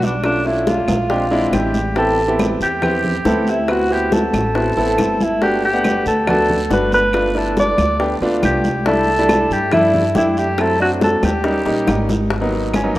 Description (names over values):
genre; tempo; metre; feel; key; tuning
Afro-Cuban jazz; 139 BPM; 4/4; straight; unclear; A4 = 440 Hz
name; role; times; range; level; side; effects
breathy alto saxophone; melody; 0.0-13.0 s; C#4 to D5; -18 LUFS; equal; none
warm grand piano; accompaniment; 0.0-13.0 s; F#3 to F#5; -19 LUFS; equal; none
upright bass; bass; 0.0-13.0 s; G1 to G#2; -24 LUFS; equal; none
congas; percussion; 0.0-13.0 s; none; -23 LUFS; equal; none
guiro; percussion; 0.0-13.0 s; none; -38 LUFS; right 3 dB; none
bongos; percussion; 0.2-13.0 s; none; -27 LUFS; left 4 dB; none
claves; percussion; 0.2-13.0 s; none; -34 LUFS; right 1 dB; none
room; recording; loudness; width
moderate lush hall reverb, RT60 2.7 s; rough home demo mix; -14 LUFS; side -16 dB against mid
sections
0.0-12.3 A section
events
drum fill 11.7-12.3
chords
0.2 Bm7b5; 1.1 A#13; 2.0 Am9; 3.7 D13; 5.4 Gmaj7; 7.1 G9; 8.9 C6; 10.6 F#m7b5; 11.4 D#7; 12.3 G#m9